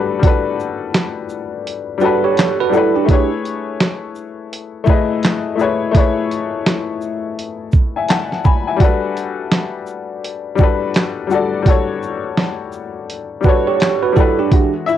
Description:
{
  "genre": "lo-fi hip hop",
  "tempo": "84 BPM",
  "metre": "4/4",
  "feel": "swing 64% on 16ths",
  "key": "unclear",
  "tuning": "A4 = 441 Hz",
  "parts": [
    { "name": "clear upright piano", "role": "accompaniment", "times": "0.0-15.0 s", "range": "E3 to B5", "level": "-18 LUFS", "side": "left 6 dB", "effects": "low-pass filter, cassette tape" },
    { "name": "dusty soul sampler-style drum kit", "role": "drums", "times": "0.2-15.0 s", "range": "handclaps, hi-hat, kick drum, shaker, snare drum", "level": "-14 LUFS", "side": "right 2 dB", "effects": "cassette tape" },
    { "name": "bell-like tine electric piano", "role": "second line", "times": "2.0-3.3, 13.4-14.7 s", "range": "D4 to C#5", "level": "-17 LUFS", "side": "right 9 dB", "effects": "fast stereo tremolo, low-pass filter, cassette tape, tape echo" }
  ],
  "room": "light reverb",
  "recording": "home recording on cassette",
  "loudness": "-14 LUFS",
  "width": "side -11 dB against mid",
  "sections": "0.0-14.5 A section",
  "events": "kick muted 1.7-3.1",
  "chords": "0.0 Gmaj9; 3.1 Amaj9; 8.8 Gmaj9",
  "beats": "| 0.23 0.94 1.66 2.37 | 3.08 3.80 4.51 5.23 | 5.94 6.66 7.37 8.08 | 8.80 9.51 10.23 10.94 | 11.66 12.37 13.08 13.80 | 14.51"
}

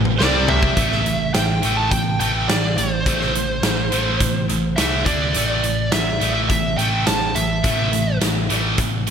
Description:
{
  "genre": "hard rock",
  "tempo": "105 BPM",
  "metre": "4/4",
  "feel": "straight",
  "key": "A minor",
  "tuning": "A4 = 440 Hz",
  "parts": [
    { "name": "percussive tonewheel organ", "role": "sustained chords", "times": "0.0-0.8 s", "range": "A3 to D5", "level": "-34 LUFS", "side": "equal", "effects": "none" },
    { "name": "distorted electric guitar", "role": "riff", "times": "0.0-9.1 s", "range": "A2 to D4", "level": "-26 LUFS", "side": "left 11 dB", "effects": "distortion" },
    { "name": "distorted electric guitar", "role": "riff", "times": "0.0-0.8 s", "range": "A2 to C4", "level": "-26 LUFS", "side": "left 1 dB", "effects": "overdrive" },
    { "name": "high-gain distorted guitar", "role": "riff", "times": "0.0-9.1 s", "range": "A2 to D4", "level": "-24 LUFS", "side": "right 11 dB", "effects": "distortion" },
    { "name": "picked electric bass", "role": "bass", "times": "0.0-9.1 s", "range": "A1 to D2", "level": "-24 LUFS", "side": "equal", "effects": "none" },
    { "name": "big rock drum kit", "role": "drums", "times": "0.1-9.1 s", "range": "hi-hat, kick drum, snare drum, toms", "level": "-22 LUFS", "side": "equal", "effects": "gated reverb" },
    { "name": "smooth overdriven lead guitar", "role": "melody", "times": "0.2-8.2 s", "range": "C5 to A5", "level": "-23 LUFS", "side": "right 2 dB", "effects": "digital delay" }
  ],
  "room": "moderate lush hall reverb, RT60 1.9 s, studio reverb",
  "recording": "bright 1980s-style digital production",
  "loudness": "-16 LUFS",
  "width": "side -7 dB against mid",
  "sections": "0.8-9.1 A section",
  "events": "drum fill 0.0-0.8",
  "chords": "0.2 C5; 0.8 Am; 5.1 D5; 5.4 A5",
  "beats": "0.20 | 0.77 1.35 1.92 2.49 | 3.06 3.63 4.21 4.78 | 5.35 5.92 6.50 7.07 | 7.64 8.21 8.79"
}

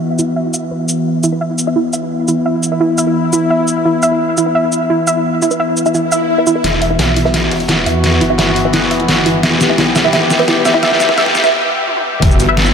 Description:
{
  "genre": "dark technical drum and bass",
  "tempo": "172 BPM",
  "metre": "4/4",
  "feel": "straight",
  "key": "E minor",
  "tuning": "A4 = 440 Hz",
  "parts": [
    { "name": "sweeping resonant pad", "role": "sustained chords", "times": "0.0-12.7 s", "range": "E3 to G4", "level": "-16 LUFS", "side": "left 1 dB", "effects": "chorus, sidechain pumping" },
    { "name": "soft round pluck", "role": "arpeggios", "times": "0.2-11.3 s", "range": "E4 to E5", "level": "-17 LUFS", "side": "right 2 dB", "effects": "chorus, cassette tape, sidechain pumping, analog delay" },
    { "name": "dubstep drum kit", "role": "drums", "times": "0.2-12.7 s", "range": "cabasa, hi-hat, snare drum, toms", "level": "-15 LUFS", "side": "equal", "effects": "none" },
    { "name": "filtered dub chord stab", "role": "stabs", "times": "1.3-12.5 s", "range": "E4 to E5", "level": "-21 LUFS", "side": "equal", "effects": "phaser, analog chorus, vintage 12-bit sampler grit, analog delay" },
    { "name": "swell", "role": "sound effects", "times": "6.0-6.6 s", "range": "none", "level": "-24 LUFS", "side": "left 2 dB", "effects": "none" },
    { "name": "snarling distorted saw bass", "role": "bass", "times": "6.6-12.7 s", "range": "E1 to E2", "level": "-19 LUFS", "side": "equal", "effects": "distortion, tube saturation" },
    { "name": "crunchy breakbeat drum kit", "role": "drums", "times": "6.6-12.7 s", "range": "hi-hat, snare drum", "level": "-27 LUFS", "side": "equal", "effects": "none" },
    { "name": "electronic kick drum", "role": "drums", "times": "12.2-12.3 s", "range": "none", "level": "-12 LUFS", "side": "equal", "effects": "none" }
  ],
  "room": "wet huge ambient reverb, RT60 9.4 s",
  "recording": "dreamy mix soaked in reverb, high-pass filter",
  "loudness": "-11 LUFS",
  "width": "side -6 dB against mid",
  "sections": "0.0-6.6 A section; 6.6-12.2 B section",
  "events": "filter sweep on analog synth pad 0.0-6.6; filter sweep on synth pluck 0.0-6.6, 6.6-12.2; swell 6.0-6.6; build-up 6.6-12.2; drum fill 6.6-11.5, 11.9-12.2; filter sweep on synth stab 6.6-12.2; break 11.5-12.2",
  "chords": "0.0 E5; 6.6 Em",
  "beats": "0.01 0.36 0.71 | 1.06 1.41 1.76 2.11 | 2.46 2.81 3.15 3.50 | 3.85 4.20 4.55 4.90 | 5.25 5.60 5.95 6.29 | 6.64 6.99 7.34 7.69 | 8.04 8.39 8.74 9.09 | 9.43 9.78 10.13 10.48 | 10.83 11.18 11.53 11.88 | 12.22 12.57"
}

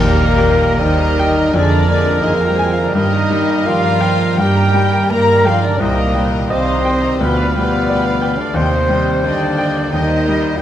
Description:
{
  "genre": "classical",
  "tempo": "67-90 BPM",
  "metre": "4/4",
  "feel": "rubato",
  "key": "Eb major",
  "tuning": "A4 = 439 Hz",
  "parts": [
    { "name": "clear grand piano", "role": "melody", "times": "0.0-10.6 s", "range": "C2 to Ab5", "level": "-19 LUFS", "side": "left 2 dB", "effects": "none" },
    { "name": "dark studio violin section", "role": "melody", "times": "0.0-10.6 s", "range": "Bb4 to F5", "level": "-30 LUFS", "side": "left 5 dB", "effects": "none" },
    { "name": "clear oboe", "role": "second line", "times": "0.0-10.6 s", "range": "Bb4 to G5", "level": "-23 LUFS", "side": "right 2 dB", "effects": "none" },
    { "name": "concert flute", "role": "second line", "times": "0.0-10.6 s", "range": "Bb4 to Bb5", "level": "-24 LUFS", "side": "left 1 dB", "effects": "none" },
    { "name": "warm studio violin section", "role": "second line", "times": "0.0-10.6 s", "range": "Bb4 to Bb5", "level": "-26 LUFS", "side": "left 4 dB", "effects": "none" },
    { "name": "mellow bassoon", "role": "accompaniment", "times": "0.0-10.6 s", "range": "G3 to Ab3", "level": "-27 LUFS", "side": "right 2 dB", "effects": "none" },
    { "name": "rich chamber viola section", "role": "accompaniment", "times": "0.0-10.6 s", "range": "G4 to Bb5", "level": "-26 LUFS", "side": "equal", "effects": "none" },
    { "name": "mellow trombone section", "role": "sustained chords", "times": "0.0-10.6 s", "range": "Eb3 to Bb3", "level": "-27 LUFS", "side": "right 4 dB", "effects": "none" },
    { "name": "warm French horn section", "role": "sustained chords", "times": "0.0-10.6 s", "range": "Bb3 to Bb4", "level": "-19 LUFS", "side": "left 2 dB", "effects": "none" },
    { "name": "warm chamber cello section", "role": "bass", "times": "0.0-10.6 s", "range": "Bb2 to Bb3", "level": "-23 LUFS", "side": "right 2 dB", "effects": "none" },
    { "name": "warm studio double bass section", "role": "bass", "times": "0.0-10.6 s", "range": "C2 to G2", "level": "-20 LUFS", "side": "right 3 dB", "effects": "none" },
    { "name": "timpani", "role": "percussion", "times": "0.0-1.1, 8.6-9.5 s", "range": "Eb3", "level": "-27 LUFS", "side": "left 1 dB", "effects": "none" }
  ],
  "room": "moderate concert hall reverb, RT60 1.9 s",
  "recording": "close, detailed microphones",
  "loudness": "-12 LUFS",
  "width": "side -11 dB against mid",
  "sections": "0.0-10.6 A section",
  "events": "none",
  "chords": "0.0 Eb; 1.5 Bb7/F; 2.9 Eb/G; 5.8 Cm7; 7.2 G7/D; 8.5 Cm/Eb",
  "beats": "0.79 1.54 2.24 | 2.94 3.65 4.38 5.10 | 5.80 6.49 7.20 7.88 | 8.55 9.24 9.92 10.59"
}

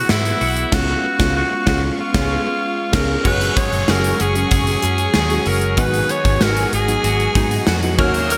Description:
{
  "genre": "1980s-style pop",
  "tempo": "95 BPM",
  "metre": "4/4",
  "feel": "straight",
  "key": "F# major from 3.3 s",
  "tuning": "A4 = 440 Hz",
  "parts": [
    { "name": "raspy alto saxophone", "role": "melody", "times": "0.0-8.4 s", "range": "E4 to C#5", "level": "-23 LUFS", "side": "equal", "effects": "none" },
    { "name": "FM electric piano with soft pad layer", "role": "accompaniment", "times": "0.0-8.4 s", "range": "F#3 to G#4", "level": "-27 LUFS", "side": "equal", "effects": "chorus, tremolo" },
    { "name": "lush unison pad", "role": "sustained chords", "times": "0.0-8.4 s", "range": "B3 to E6", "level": "-30 LUFS", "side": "equal", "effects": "chorus" },
    { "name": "twelve-string electric guitar", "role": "riff", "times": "0.0-8.4 s", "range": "D#3 to G#4", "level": "-29 LUFS", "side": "equal", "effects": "analog chorus" },
    { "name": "vintage muted fingered electric bass", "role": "bass", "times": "0.1-8.4 s", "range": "F#1 to G#2", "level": "-24 LUFS", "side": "equal", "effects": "none" },
    { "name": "gated 80s drum kit", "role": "drums", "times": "0.1-8.4 s", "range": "crash cymbal, hi-hat, kick drum, snare drum, tambourine", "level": "-22 LUFS", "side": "equal", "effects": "none" },
    { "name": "funky polysynth comp", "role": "stabs", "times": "3.2-8.4 s", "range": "G#3 to C#5", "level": "-32 LUFS", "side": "equal", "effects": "none" }
  ],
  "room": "moderate lush hall reverb, RT60 2.4 s",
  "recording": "bright 1980s-style digital production",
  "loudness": "-17 LUFS",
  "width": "mono",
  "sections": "0.0-3.3 A section; 3.3-8.4 B section",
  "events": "band accent 0.7-3.3",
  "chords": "0.0 Bsus4; 0.7 C#7; 3.3 F#sus2; 5.8 G#m7",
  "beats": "0.09 | 0.72 1.36 1.99 2.62 | 3.25 3.88 4.51 5.15 | 5.78 6.41 7.04 7.67 | 8.30"
}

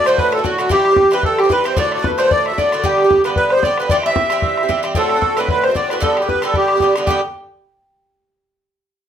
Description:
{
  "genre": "celtic folk, Celtic reel",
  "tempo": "227 BPM",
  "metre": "4/4",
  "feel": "swing 55% on 8ths",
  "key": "G major",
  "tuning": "A4 = 439 Hz",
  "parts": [
    { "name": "accordion", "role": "melody", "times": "0.0-7.2 s", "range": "F#4 to E5", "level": "-16 LUFS", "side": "equal", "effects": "light tremolo tuning, slapback echo" },
    { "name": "mandolin", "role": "second line", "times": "0.0-7.2 s", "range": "F#4 to E5", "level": "-23 LUFS", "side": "right 2 dB", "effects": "none" },
    { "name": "mellow hollow concert flute", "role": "second line", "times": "0.0-7.1 s", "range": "F#4 to E5", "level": "-25 LUFS", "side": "left 7 dB", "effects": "none" },
    { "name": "Irish bouzouki", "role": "accompaniment", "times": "0.0-7.2 s", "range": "G2 to G4", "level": "-20 LUFS", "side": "right 3 dB", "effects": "none" },
    { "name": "bodhran", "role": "percussion", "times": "0.1-7.2 s", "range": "none", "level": "-23 LUFS", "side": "left 3 dB", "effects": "none" }
  ],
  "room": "moderate studio reverb, RT60 0.6 s",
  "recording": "none",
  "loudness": "-13 LUFS",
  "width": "side -9 dB against mid",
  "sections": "0.0-7.1 A section; 7.1-8.1 B section",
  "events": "none",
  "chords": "0.0 D; 0.7 C; 1.8 D; 2.8 G; 3.9 C; 5.0 D7; 6.0 G",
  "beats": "0.18 0.45 | 0.71 0.98 1.24 1.51 | 1.77 2.04 2.31 2.57 | 2.83 3.10 3.37 3.63 | 3.90 4.16 4.42 4.69 | 4.95 5.22 5.48 5.75 | 6.01 6.28 6.54 6.81 | 7.07"
}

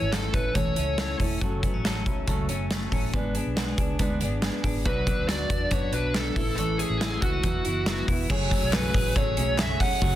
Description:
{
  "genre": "jangly indie pop",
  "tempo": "139 BPM",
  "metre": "4/4",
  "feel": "straight",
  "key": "F# minor",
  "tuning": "A4 = 439 Hz",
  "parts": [
    { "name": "fuzz lead guitar", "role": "melody", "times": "0.0-1.2, 4.9-10.2 s", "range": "F#4 to F#5", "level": "-29 LUFS", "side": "equal", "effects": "distortion, slapback echo" },
    { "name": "fingerpicked steel-string acoustic guitar", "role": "accompaniment", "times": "0.0-10.2 s", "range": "F#2 to B4", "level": "-32 LUFS", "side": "right 4 dB", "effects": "none" },
    { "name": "twelve-string electric guitar", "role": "arpeggios", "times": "0.0-10.2 s", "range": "E3 to A4", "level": "-33 LUFS", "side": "left 3 dB", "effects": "slapback echo" },
    { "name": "vintage muted fingered electric bass", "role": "bass", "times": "0.0-10.2 s", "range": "E1 to F#2", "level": "-31 LUFS", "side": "equal", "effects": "none" },
    { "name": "big rock drum kit", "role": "drums", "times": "0.1-10.1 s", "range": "crash cymbal, hi-hat, kick drum, snare drum", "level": "-27 LUFS", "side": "equal", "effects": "none" },
    { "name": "group handclap", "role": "percussion", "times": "8.7-9.7 s", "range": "none", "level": "-37 LUFS", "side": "left 6 dB", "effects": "none" }
  ],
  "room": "small room ambience",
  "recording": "dense, heavily limited modern master",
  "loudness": "-23 LUFS",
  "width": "side -13 dB against mid",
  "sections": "0.0-8.3 A section; 8.3-10.2 B section",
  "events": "none",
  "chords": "0.0 A; 1.4 F#m; 3.1 G#dim; 4.9 Bm; 6.4 A; 7.4 Esus2; 8.3 F#madd9",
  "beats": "0.12 0.55 0.98 | 1.41 1.84 2.27 2.70 | 3.13 3.56 4.00 4.43 | 4.86 5.29 5.72 6.15 | 6.58 7.01 7.44 7.87 | 8.30 8.73 9.16 9.59 | 10.02"
}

